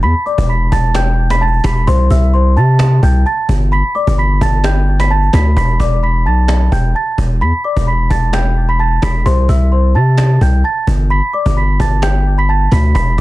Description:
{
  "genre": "hip hop, trap",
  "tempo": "130 BPM",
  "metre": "4/4",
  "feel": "half-time",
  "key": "E minor",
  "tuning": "A4 = 440 Hz",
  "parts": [
    { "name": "celesta", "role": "melody", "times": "0.0-13.2 s", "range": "C5 to B6", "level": "-17 LUFS", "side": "right 1 dB", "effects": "tape echo" },
    { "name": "long sustained 808-style bass", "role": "bass", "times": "0.0-13.2 s", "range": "E1 to C3", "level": "-12 LUFS", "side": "equal", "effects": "none" },
    { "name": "cajon", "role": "drums", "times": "0.0-13.2 s", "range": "none", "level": "-20 LUFS", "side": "equal", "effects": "vintage 12-bit sampler grit" }
  ],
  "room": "small room ambience",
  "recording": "dense, heavily limited modern master",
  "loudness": "-11 LUFS",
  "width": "side -17 dB against mid",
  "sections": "0.0-5.6 A section; 5.6-13.2 B section",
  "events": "hi-hats muted 5.6-12.9",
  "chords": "0.0 Em7; 1.9 C; 3.7 Gadd9; 5.6 Em7; 9.3 C; 11.1 Gadd9"
}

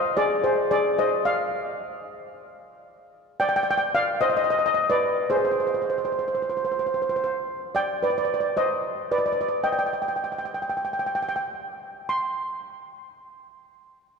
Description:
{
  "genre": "calypso",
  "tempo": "111 BPM",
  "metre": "4/4",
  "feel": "straight",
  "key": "C minor",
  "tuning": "A4 = 440 Hz",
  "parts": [
    { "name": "steel pan", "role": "solo", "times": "0.0-12.3 s", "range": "Ab4 to C6", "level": "-23 LUFS", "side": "equal", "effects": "none" }
  ],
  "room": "wet church reverb, RT60 3.8 s",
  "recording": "recorded in a church or concert hall",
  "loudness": "-22 LUFS",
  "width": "side -5 dB against mid",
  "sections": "0.0-7.7 A section; 7.7-12.1 B section; 12.1-14.2 C section",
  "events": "none",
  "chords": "0.0 Ab(#11); 1.2 N.C.; 3.4 Abmaj7#11 (rootless); 5.6 N.C.; 7.7 Cmadd9; 9.9 N.C."
}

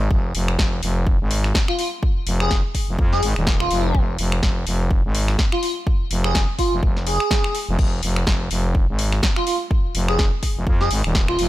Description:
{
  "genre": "bass house",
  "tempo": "125 BPM",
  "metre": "4/4",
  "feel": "swing 57% on 16ths",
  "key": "F minor",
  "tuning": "A4 = 439 Hz",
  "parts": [
    { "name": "growling FM bass", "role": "bass", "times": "0.0-11.5 s", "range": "Eb1 to F2", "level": "-21 LUFS", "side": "equal", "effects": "overdrive, sidechain pumping" },
    { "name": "electronic kick drum", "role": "drums", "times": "0.1-11.3 s", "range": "none", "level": "-20 LUFS", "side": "equal", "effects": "studio reverb" },
    { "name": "house drum kit", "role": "drums", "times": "0.3-11.5 s", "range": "crash cymbal, finger snaps, hi-hat, snare drum", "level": "-25 LUFS", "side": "left 1 dB", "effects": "studio reverb" },
    { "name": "airy dreamy lead", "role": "melody", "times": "1.7-11.5 s", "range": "F4 to Ab4", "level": "-24 LUFS", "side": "equal", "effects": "chorus, cassette tape, ping-pong delay" }
  ],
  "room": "digital ambience",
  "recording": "none",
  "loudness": "-18 LUFS",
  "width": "side -15 dB against mid",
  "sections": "0.0-11.5 A section",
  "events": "none",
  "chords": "none"
}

